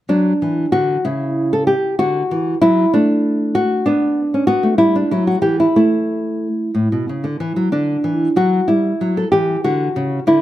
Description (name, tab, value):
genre	classical, baroque-style dance for nylon-string guitar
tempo	63 BPM (dotted quarters)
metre	6/8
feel	rubato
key	D major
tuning	A4 = 440 Hz
part	nylon-string guitar	solo	0.1-10.4 s	A2 to A4	-14 LUFS	equal	none
room	light reverb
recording	close, detailed microphones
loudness	-14 LUFS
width	side -13 dB against mid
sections	0.1-10.4 A section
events	none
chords	0.1 D; 1.1 N.C.; 2.0 D; 3.9 Bm; 4.8 Em; 5.8 N.C.; 6.7 A; 7.7 D; 8.7 Emadd9; 9.6 D